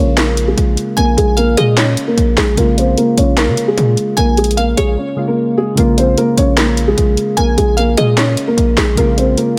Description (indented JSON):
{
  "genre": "hip hop, trap",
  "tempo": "150 BPM",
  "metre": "4/4",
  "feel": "half-time",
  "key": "Bb minor",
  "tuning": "A4 = 440 Hz",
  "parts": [
    { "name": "felt-muted upright piano", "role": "melody", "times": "0.0-9.5 s", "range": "Ab3 to Db5", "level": "-17 LUFS", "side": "equal", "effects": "low-pass filter" },
    { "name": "soft electric-piano-like synth keys", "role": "accompaniment", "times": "0.0-9.6 s", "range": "Db3 to F4", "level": "-23 LUFS", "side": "equal", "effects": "chorus, low-pass filter" },
    { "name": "hard-hitting 808-style bass", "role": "bass", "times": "0.0-9.4 s", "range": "Bb1 to Db3", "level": "-17 LUFS", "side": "equal", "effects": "none" },
    { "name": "trap drum kit", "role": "drums", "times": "0.2-9.5 s", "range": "handclaps, hi-hat, snare drum", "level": "-21 LUFS", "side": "equal", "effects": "overdrive" },
    { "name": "glassy wavetable pluck", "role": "second line", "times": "1.0-8.5 s", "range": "Db5 to Ab5", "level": "-23 LUFS", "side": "equal", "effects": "chorus, tape echo" }
  ],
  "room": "little or no reverb",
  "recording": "none",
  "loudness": "-13 LUFS",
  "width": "mono",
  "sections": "0.0-9.6 A section",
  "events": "filter sweep 0.0-5.8; break 5.0-5.8",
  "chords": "0.0 Bbm7",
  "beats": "0.17 0.57 | 0.97 1.37 1.77 2.17 | 2.57 2.97 3.37 3.77 | 4.17 4.57 4.97 5.37 | 5.77 6.17 6.57 6.97 | 7.37 7.77 8.17 8.57 | 8.97 9.37"
}